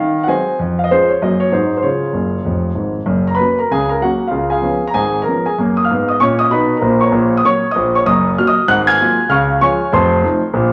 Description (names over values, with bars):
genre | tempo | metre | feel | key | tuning
jazz, stride piano | 193 BPM | 4/4 | swing 59% on 8ths | Db major, F# major from 3.1 s | A4 = 440 Hz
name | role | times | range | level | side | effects
warm concert grand piano | solo | 0.0-10.7 s | F1 to Ab6 | -15 LUFS | equal | none
room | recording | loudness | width
wet large studio reverb, RT60 1.3 s | none | -15 LUFS | mono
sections
0.0-3.1 A section; 3.1-10.7 B section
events
grand piano fill 2.1-3.1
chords
0.0 Ab7/Eb; 0.6 Db/F; 1.2 Gb; 1.5 Ab7; 1.8 Db; 3.1 F#; 4.3 C#7; 5.6 F#; 6.8 F#/A#; 8.1 Ebm/Gb; 8.7 Absus2; 9.3 Db; 9.9 F7